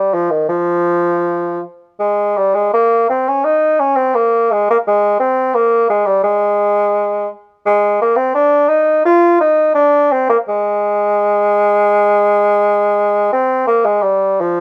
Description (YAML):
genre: classical, baroque-style fantasia for unaccompanied bassoon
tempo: 85 BPM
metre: 4/4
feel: rubato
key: unclear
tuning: A4 = 436 Hz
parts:
  - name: warm bassoon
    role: solo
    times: 0.0-14.6 s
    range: Eb3 to F4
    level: -14 LUFS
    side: equal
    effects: none
room: light reverb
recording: close, detailed microphones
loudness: -14 LUFS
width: mono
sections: 0.0-14.6 A section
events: none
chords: none